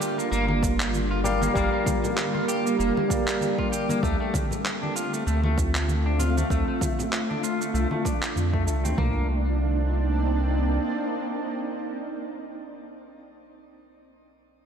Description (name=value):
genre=sunset chillout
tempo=97 BPM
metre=4/4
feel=swing 56% on 16ths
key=C minor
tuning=A4 = 442 Hz
part: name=barky tine electric piano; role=accompaniment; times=0.0-4.0 s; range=G3 to F5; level=-28 LUFS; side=moving between left 4 dB and right 4 dB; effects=overdrive, auto-pan, digital delay, shimmer reverb, slapback echo
part: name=shimmering ambient pad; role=sustained chords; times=0.0-12.2 s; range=D3 to G4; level=-28 LUFS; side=right 1 dB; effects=chorus, built-in reverb, shimmer reverb
part: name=electric guitar at the edge of break-up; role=arpeggios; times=0.0-9.3 s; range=A3 to G4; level=-31 LUFS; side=left 2 dB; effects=wide subtle chorus, low-pass filter, digital delay, shimmer reverb, slapback echo
part: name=electronic shaker and handclaps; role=drums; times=0.0-9.0 s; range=none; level=-32 LUFS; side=right 2 dB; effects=overdrive
part: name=warm sub bass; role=bass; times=0.3-10.8 s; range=F1 to F2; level=-25 LUFS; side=equal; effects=none
part: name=congas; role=percussion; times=0.5-9.0 s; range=none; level=-35 LUFS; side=left 2 dB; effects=none
part: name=deep house drum kit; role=drums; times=0.6-9.1 s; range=kick drum, toms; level=-28 LUFS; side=equal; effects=overdrive
room=wet concert hall reverb, RT60 2.1 s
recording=big arena sound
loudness=-23 LUFS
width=side -7 dB against mid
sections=0.0-9.0 A section; 9.0-11.4 B section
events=filter sweep on sub bass 0.0-9.0; filter sweep on ambient pad 0.0-9.0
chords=0.0 Gm7; 4.0 Dm7; 9.0 Cm9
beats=0.32 0.94 | 1.55 2.17 2.79 3.41 | 4.03 4.65 5.26 5.88 | 6.50 7.12 7.74 8.36 | 8.98 9.59 10.21 10.83